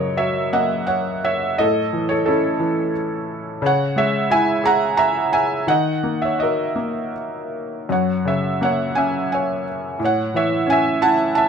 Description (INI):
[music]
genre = classical, lyrical solo piano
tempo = 77-91 BPM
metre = 3/4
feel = rubato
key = unclear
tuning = A4 = 440 Hz
[part]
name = felt-muted upright piano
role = solo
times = 0.0-11.5 s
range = F#2 to A#5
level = -18 LUFS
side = right 1 dB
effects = none
[sound]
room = light reverb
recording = close, detailed microphones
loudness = -17 LUFS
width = side -6 dB against mid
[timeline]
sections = 0.0-11.5 A section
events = none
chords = 0.0 F#; 1.6 A; 3.6 C#m; 5.7 D#m; 7.9 F#; 10.0 A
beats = 0.17 0.88 | 1.59 2.28 2.96 | 3.63 4.30 4.99 | 5.69 6.41 7.15 | 7.90 8.62 9.32 | 10.02 10.69 11.36